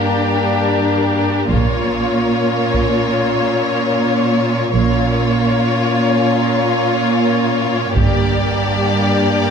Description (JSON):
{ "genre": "cinematic, epic orchestral film score", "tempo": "75 BPM", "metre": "4/4", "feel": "straight", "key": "unclear", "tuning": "A4 = 444 Hz", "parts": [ { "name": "warm symphonic violin section", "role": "melody", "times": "0.0-9.5 s", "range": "Bb4 to D5", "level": "-21 LUFS", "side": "left 2 dB", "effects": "none" }, { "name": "warm symphonic violin section", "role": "second line", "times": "0.0-9.5 s", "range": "F4 to G4", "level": "-22 LUFS", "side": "left 4 dB", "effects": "none" }, { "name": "rich symphonic viola section", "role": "accompaniment", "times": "0.0-9.5 s", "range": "Bb3 to D4", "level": "-22 LUFS", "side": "right 2 dB", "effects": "none" }, { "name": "warm French horn section", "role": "sustained chords", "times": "0.0-9.5 s", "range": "Bb3 to D4", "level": "-21 LUFS", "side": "left 4 dB", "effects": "none" }, { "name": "rich symphonic cello section", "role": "bass", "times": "0.0-9.5 s", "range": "G2 to Bb2", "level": "-19 LUFS", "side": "right 3 dB", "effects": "none" }, { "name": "warm symphonic double bass section", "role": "bass", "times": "1.5-8.7 s", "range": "G1 to Bb1", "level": "-22 LUFS", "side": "right 4 dB", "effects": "none" }, { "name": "solo taiko drums", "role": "drums", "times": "1.5-3.1, 8.0-9.5 s", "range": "none", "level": "-22 LUFS", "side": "equal", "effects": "none" } ], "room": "moderate concert hall reverb, RT60 2.3 s", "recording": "none", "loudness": "-14 LUFS", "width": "side -6 dB against mid", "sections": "0.0-9.5 A section", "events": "none", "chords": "0.0 Gm; 1.5 Bbm; 8.0 Gm", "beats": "0.73 | 1.54 2.34 3.15 3.95 | 4.76 5.56 6.36 7.17 | 7.97 8.77" }